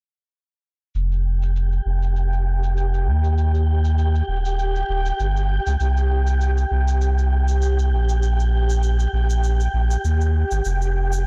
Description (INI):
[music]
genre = organic downtempo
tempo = 99 BPM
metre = 4/4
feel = swing 55% on 16ths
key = unclear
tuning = A4 = 440 Hz
[part]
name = warm sub bass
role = bass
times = 0.9-11.3 s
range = Eb1 to Eb2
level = -21 LUFS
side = equal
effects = none
[part]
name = shaker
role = drums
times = 0.9-11.2 s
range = none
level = -43 LUFS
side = equal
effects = low-pass filter on perc, low-pass filter on room
[part]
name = wind-like tuned noise texture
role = texture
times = 1.5-11.3 s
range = G4 to G5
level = -30 LUFS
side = equal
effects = built-in reverb
[sound]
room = little or no reverb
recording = blown-out, overdriven recording, overdrive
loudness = -20 LUFS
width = mono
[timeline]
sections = 1.0-11.3 A section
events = filter sweep on sub bass 1.0-11.3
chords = 1.0 Fsus2; 3.4 Eb; 5.8 C5; 8.2 Eb; 10.6 Fsus2